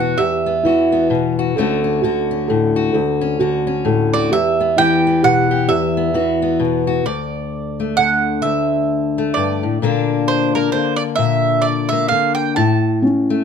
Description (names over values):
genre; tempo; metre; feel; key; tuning
acoustic folk duo or small band; 131 BPM; 3/4; swing 58% on 8ths; D major; A4 = 440 Hz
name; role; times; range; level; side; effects
mandolin; second line; 0.0-1.1, 4.1-13.0 s; Bb4 to A5; -18 LUFS; right 6 dB; none
fingerpicked steel-string acoustic guitar; accompaniment; 0.0-13.4 s; D2 to G4; -18 LUFS; left 5 dB; none
felt-muted upright piano; arpeggios; 0.2-6.6, 12.6-13.4 s; C#4 to A4; -19 LUFS; right 3 dB; none
room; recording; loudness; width
light reverb; close, detailed microphones; -15 LUFS; side -7 dB against mid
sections
0.0-7.1 A section; 7.1-13.4 B section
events
mandolin solo 0.0-7.1, 7.1-13.4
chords
0.0 Emadd9; 1.6 Dmaj7; 4.3 Emadd9; 7.1 Dsus2; 9.8 Bb; 12.6 A